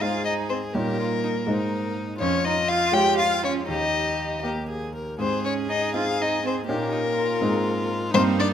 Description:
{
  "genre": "quick classical-period movement for piano quartet",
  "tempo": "81 BPM (dotted quarters)",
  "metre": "6/8",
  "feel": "rubato",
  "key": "Ab major",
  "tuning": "A4 = 440 Hz",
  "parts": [
    { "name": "warm violin", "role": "melody", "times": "0.0-8.5 s", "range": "Bb4 to G5", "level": "-25 LUFS", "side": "left 5 dB", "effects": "none" },
    { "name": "clear violin", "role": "second line", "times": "0.0-8.5 s", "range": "Eb4 to Bb4", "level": "-32 LUFS", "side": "left 2 dB", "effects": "none" },
    { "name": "rich cello", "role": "second line", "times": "0.0-8.5 s", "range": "Bb3 to G4", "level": "-29 LUFS", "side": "right 10 dB", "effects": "none" },
    { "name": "bright grand piano", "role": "accompaniment", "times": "0.0-8.5 s", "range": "Eb2 to Db5", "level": "-27 LUFS", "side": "equal", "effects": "none" }
  ],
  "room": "moderate recital hall reverb, RT60 1.6 s",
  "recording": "close, detailed microphones",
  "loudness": "-22 LUFS",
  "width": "side -9 dB against mid",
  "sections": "0.0-8.5 A section",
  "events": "none",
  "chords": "0.0 Ab; 0.8 Eb7/Bb; 1.5 Ab; 2.2 Db/F; 3.7 Eb; 5.2 Ab; 6.7 Eb7/Bb; 7.4 Ab",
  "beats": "0.01 | 0.75 1.48 | 2.20 2.94 | 3.68 4.44 | 5.19 5.94 | 6.68 7.41 | 8.14"
}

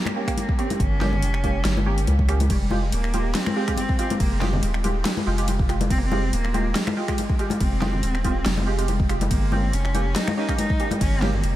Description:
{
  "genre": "deep dubstep",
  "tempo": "141 BPM",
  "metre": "4/4",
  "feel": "swing 54% on 16ths, half-time",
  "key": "F minor",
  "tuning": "A4 = 442 Hz",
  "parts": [
    { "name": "rich cello", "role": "melody", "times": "0.0-11.6 s", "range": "G3 to Eb4", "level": "-30 LUFS", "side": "equal", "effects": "dub echo" },
    { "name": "dubstep drum kit", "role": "drums", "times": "0.1-11.5 s", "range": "finger snaps, hi-hat, ride cymbal, snare drum", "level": "-30 LUFS", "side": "equal", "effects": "none" },
    { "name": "congas", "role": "percussion", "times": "0.1-11.4 s", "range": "none", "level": "-28 LUFS", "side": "left 2 dB", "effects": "none" },
    { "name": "filtered dub chord stab", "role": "stabs", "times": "0.2-11.3 s", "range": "Ab3 to G4", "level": "-30 LUFS", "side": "right 3 dB", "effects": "analog chorus, dub echo" },
    { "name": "electronic kick drum", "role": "drums", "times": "0.3-11.1 s", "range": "none", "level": "-24 LUFS", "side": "equal", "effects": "none" },
    { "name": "soft dub sub bass", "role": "bass", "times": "0.8-11.6 s", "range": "Eb1 to Db2", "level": "-23 LUFS", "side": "equal", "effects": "none" }
  ],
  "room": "light reverb",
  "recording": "none",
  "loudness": "-20 LUFS",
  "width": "side -14 dB against mid",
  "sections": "0.0-11.6 A section",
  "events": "none",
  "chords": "0.0 Gdim; 2.5 Fmadd9; 9.3 Gdim",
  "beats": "0.37 | 0.80 1.22 1.65 2.07 | 2.50 2.92 3.35 3.78 | 4.20 4.63 5.05 5.48 | 5.90 6.33 6.75 7.18 | 7.61 8.03 8.46 8.88 | 9.31 9.73 10.16 10.58 | 11.01 11.44"
}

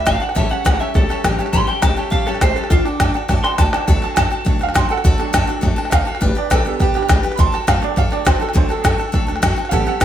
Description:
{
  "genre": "rockabilly",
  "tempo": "205 BPM",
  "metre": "4/4",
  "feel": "straight",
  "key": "D major",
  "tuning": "A4 = 440 Hz",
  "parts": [
    { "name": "electric guitar through a small old amp", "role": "melody", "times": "0.0-3.9 s", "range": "D4 to C6", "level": "-21 LUFS", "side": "right 1 dB", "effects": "none" },
    { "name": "picked steel-string acoustic guitar", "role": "accompaniment", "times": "0.0-10.0 s", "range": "A2 to B4", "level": "-24 LUFS", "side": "left 2 dB", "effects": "none" },
    { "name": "upright bass", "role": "bass", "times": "0.0-10.0 s", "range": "E1 to F#2", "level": "-20 LUFS", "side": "equal", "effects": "none" },
    { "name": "bright upright piano", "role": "accompaniment", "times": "0.1-10.0 s", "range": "F#3 to C6", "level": "-24 LUFS", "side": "right 7 dB", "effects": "none" },
    { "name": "organic electronic drum kit", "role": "drums", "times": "0.1-10.0 s", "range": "hi-hat, kick drum, snare drum", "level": "-17 LUFS", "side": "left 1 dB", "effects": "none" }
  ],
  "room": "light reverb",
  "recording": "band playing live in one room",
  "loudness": "-14 LUFS",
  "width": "side -10 dB against mid",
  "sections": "0.0-3.9 A section; 3.9-10.0 B section",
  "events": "drum fill 3.3-3.9; upright piano solo 3.9-10.0",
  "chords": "0.4 A7; 2.7 D; 6.2 G; 7.4 D",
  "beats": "0.07 | 0.36 0.66 0.95 1.24 | 1.54 1.83 2.12 2.42 | 2.71 3.00 3.29 3.59 | 3.88 4.17 4.46 4.76 | 5.05 5.34 5.63 5.93 | 6.22 6.51 6.80 7.09 | 7.39 7.68 7.97 8.26 | 8.55 8.85 9.14 9.43 | 9.72 10.01"
}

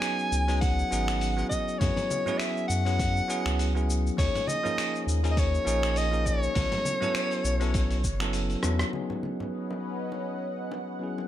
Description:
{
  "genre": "sunset chillout",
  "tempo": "101 BPM",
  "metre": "4/4",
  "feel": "swing 56% on 16ths",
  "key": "C# dorian",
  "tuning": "A4 = 440 Hz",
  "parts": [
    { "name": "clear soprano saxophone", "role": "melody", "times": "0.0-8.3 s", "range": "C#5 to G#5", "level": "-30 LUFS", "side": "left 1 dB", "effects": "tape echo" },
    { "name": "bell-like tine electric piano", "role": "accompaniment", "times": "0.0-11.3 s", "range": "E#3 to A4", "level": "-31 LUFS", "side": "moving between left 5 dB and right 4 dB", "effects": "auto-pan, low-pass filter, ping-pong delay" },
    { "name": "dusty soul sampler-style drum kit", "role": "drums", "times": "0.0-11.3 s", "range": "cabasa, finger snaps, hi-hat, rim click", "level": "-35 LUFS", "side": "left 1 dB", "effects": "low-pass filter on perc, low-pass filter on hats, low-pass filter on snare, low-pass filter on room" },
    { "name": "warm sub bass", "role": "bass", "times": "0.3-8.8 s", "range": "F#1 to F#2", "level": "-27 LUFS", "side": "equal", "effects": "none" },
    { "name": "electronic kick drum", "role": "drums", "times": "0.6-8.2 s", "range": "none", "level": "-30 LUFS", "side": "equal", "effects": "none" },
    { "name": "congas and bongos", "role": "percussion", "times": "1.8-11.3 s", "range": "none", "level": "-37 LUFS", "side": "left 2 dB", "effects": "none" },
    { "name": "lush unison pad", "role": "sustained chords", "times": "9.2-11.3 s", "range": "B3 to F#5", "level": "-36 LUFS", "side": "equal", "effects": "chorus, phaser" }
  ],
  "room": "light reverb",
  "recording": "none",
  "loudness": "-25 LUFS",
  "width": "side -12 dB against mid",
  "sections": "0.0-8.9 A section; 8.9-11.3 B section",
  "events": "kick drops out 8.3-8.9; drum fill 8.6",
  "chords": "0.0 C#9sus4; 1.5 F#9sus4; 4.2 D#9sus4; 6.6 B9sus4; 8.9 C#9sus4",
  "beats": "0.02 0.62 1.21 | 1.81 2.40 2.99 3.59 | 4.18 4.78 5.37 5.96 | 6.56 7.15 7.75 8.34 | 8.93 9.53 10.12 10.72"
}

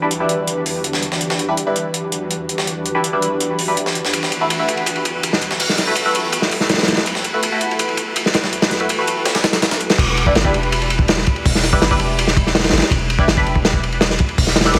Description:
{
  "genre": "drum and bass, jungle",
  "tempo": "164 BPM",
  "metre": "4/4",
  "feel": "straight",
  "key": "E minor",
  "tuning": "A4 = 440 Hz",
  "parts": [
    { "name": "granular cloud pad", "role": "sustained chords", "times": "0.0-10.0 s", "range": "E3 to B4", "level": "-27 LUFS", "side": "equal", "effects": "built-in reverb" },
    { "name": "band-passed chord stab", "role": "stabs", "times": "0.0-14.7 s", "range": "G3 to B4", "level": "-25 LUFS", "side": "equal", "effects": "phaser, lush chorus, dub echo" },
    { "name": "breakbeat sampler-style drum kit", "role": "drums", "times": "0.1-10.0 s", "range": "hi-hat, snare drum", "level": "-25 LUFS", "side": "equal", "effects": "high-pass filter on hats, high-pass filter on snare, high-pass filter on room" },
    { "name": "crunchy breakbeat drum kit", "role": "drums", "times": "4.1-14.8 s", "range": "crash cymbal, hi-hat, kick drum, ride cymbal, snare drum", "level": "-19 LUFS", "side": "equal", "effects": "none" },
    { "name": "long sustained 808-style bass", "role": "bass", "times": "10.0-14.8 s", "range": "E1 to G1", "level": "-23 LUFS", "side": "equal", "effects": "none" }
  ],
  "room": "light reverb, studio reverb",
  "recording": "vinyl crackle",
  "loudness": "-18 LUFS",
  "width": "mono",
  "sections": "0.0-10.0 A section; 10.0-14.8 B section",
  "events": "filter sweep on ambient pad 0.0-10.0; drop 10.0-14.8",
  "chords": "0.0 Em7; 4.1 B7sus4; 10.0 Em7",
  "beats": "0.11 0.48 0.84 | 1.21 1.57 1.94 2.31 | 2.67 3.04 3.40 3.77 | 4.13 4.50 4.87 5.23 | 5.60 5.96 6.33 6.70 | 7.06 7.43 7.79 8.16 | 8.53 8.89 9.26 9.62 | 9.99 10.36 10.72 11.09 | 11.45 11.82 12.18 12.55 | 12.92 13.28 13.65 14.01 | 14.38 14.74"
}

